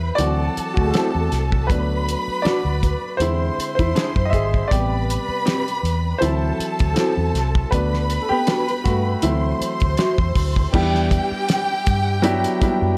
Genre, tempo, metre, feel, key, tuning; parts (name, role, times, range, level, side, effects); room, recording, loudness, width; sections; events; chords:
lush 1970s-style soul; 80 BPM; 4/4; swing 54% on 16ths; E minor; A4 = 440 Hz
warm studio string section; second line; 0.0-13.0 s; G4 to C6; -28 LUFS; equal
warm baby grand piano; accompaniment; 0.0-13.0 s; C3 to E5; -25 LUFS; equal
vintage muted fingered electric bass; bass; 0.0-13.0 s; G#1 to G2; -24 LUFS; equal
cloth-damped thuddy drum kit; drums; 0.2-12.8 s; crash cymbal, hi-hat, kick drum, snare drum; -24 LUFS; equal
electric guitar through a small old amp; riff; 0.9-10.1 s; C4 to E5; -28 LUFS; equal
light reverb, studio reverb; -20 LUFS; mono
0.0-10.7 A section; 10.7-13.0 B section
grand piano solo 0.0-10.7
0.2 D9; 1.7 D6; 3.2 E7b13; 4.7 Am9; 6.2 D9; 7.7 Gmaj7/D; 9.2 D9; 10.7 Em9